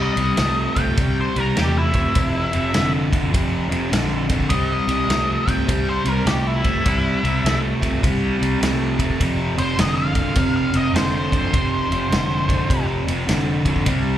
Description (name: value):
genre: blues rock power trio and southern rock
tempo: 102 BPM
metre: 4/4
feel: swing 64% on 8ths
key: unclear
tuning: A4 = 440 Hz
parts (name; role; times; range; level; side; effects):
- octave-fuzz lead guitar; melody; 0.0-12.9 s; E4 to G5; -24 LUFS; left 1 dB; wah, distortion
- fuzz guitar; riff; 0.0-14.2 s; F2 to A3; -21 LUFS; right 1 dB; distortion
- vintage muted fingered electric bass; bass; 0.0-14.1 s; F1 to E2; -24 LUFS; equal; none
- vintage drum kit; drums; 0.2-14.0 s; kick drum, ride cymbal, snare drum; -24 LUFS; equal; none
room: light reverb, small room ambience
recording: live gig heard through the venue's PA, club reverb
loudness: -17 LUFS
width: side -11 dB against mid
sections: 0.0-14.2 A section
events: none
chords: 0.0 C; 2.1 F5; 4.5 C; 9.2 F5